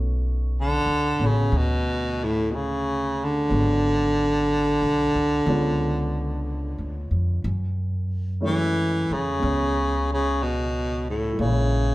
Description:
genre	jazz ballad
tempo	61 BPM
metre	4/4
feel	swing 68% on 8ths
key	F# minor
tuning	A4 = 440 Hz
part	warm baby grand piano	accompaniment	0.0-11.9 s	B2 to F#4	-30 LUFS	equal	none
part	upright bass	bass	0.0-11.9 s	G#1 to F#2	-26 LUFS	equal	none
part	breathy baritone saxophone	melody	0.6-11.9 s	A2 to E3	-23 LUFS	equal	none
room	wet large studio reverb, RT60 1.2 s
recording	band playing live in one room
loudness	-21 LUFS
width	side -17 dB against mid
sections	0.0-11.9 A section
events	none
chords	0.0 Bm9; 3.5 G#m7b5; 5.5 C#7b9; 7.4 F#m9; 11.4 A#m7b5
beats	0.52 1.51 2.50 | 3.49 4.48 5.46 6.45 | 7.43 8.42 9.41 10.40 | 11.39

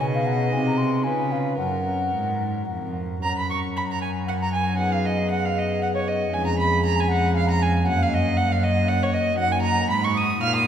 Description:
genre	classical, baroque-style sonata movement with continuo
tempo	116 BPM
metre	3/4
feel	rubato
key	F# major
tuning	A4 = 440 Hz
part	baroque flute	melody	0.0-10.7 s	C#5 to Eb6	-28 LUFS	left 4 dB	none
part	warm violin	second line	0.0-10.7 s	A#4 to F6	-25 LUFS	right 3 dB	none
part	pipe organ, flutes	accompaniment	0.0-10.7 s	E#2 to B4	-26 LUFS	equal	none
part	rich cello	bass	0.0-10.7 s	E#2 to C#3	-25 LUFS	equal	none
room	wet church reverb, RT60 3.1 s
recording	recorded in a church or concert hall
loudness	-20 LUFS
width	side -9 dB against mid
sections	0.0-3.2 A section; 3.2-10.7 B section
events	none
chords	0.0 G#m7/B; 0.5 G#7/B#; 1.1 C#7; 1.6 F#; 4.8 G#m7/F#; 6.3 C#/E#; 7.9 F#; 9.4 Ebm/Gb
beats	| 0.01 0.53 1.05 | 1.59 2.15 2.69 | 3.23 3.76 4.28 | 4.79 5.31 5.82 | 6.33 6.84 7.35 | 7.86 8.36 8.87 | 9.38 9.90 10.42

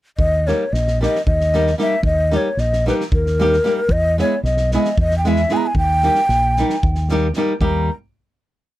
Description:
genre	balkan folk, Balkan wedding band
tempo	226 BPM (eighths)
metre	7/8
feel	straight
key	Eb phrygian dominant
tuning	A4 = 441 Hz
part	breathy mellow ney	melody	0.2-7.9 s	Bb4 to Bb5	-19 LUFS	equal	none
part	fingered electric bass	bass	0.2-7.9 s	Bb1 to E2	-19 LUFS	equal	none
part	loose indie drum kit	percussion	0.2-7.9 s	kick drum, snare drum	-24 LUFS	equal	none
part	flamenco guitar	accompaniment	0.5-7.9 s	G3 to G#4	-19 LUFS	equal	none
room	little or no reverb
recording	none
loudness	-15 LUFS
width	side -15 dB against mid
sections	0.2-7.6 A section; 7.6-8.8 final chord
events	none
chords	0.2 Eb; 3.9 E; 5.8 Eb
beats	| 0.19 0.46 0.72 0.98 1.25 1.51 1.78 | 2.04 2.31 2.57 2.83 3.10 3.36 3.63 | 3.89 4.16 4.42 4.69 4.95 5.22 5.48 | 5.75 6.02 6.28 6.55 6.82 7.08 7.35 | 7.62 7.89

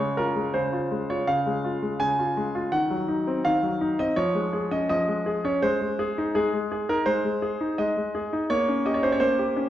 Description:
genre	classical-period piano sonatina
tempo	83 BPM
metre	4/4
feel	rubato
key	Db major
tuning	A4 = 443 Hz
part	bright concert grand piano	solo	0.0-9.7 s	Db3 to Ab5	-23 LUFS	equal	none
room	wet recital hall reverb, RT60 1.3 s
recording	dark, warm production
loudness	-23 LUFS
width	side -12 dB against mid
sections	0.0-9.7 A section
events	none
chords	0.0 Db; 2.7 Cdim/Eb; 4.2 Db/F; 5.6 Ab; 8.5 Gdim/Bb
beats	0.55 1.28 2.01 | 2.72 3.45 4.17 4.90 | 5.63 6.36 7.07 7.79 | 8.51 9.22

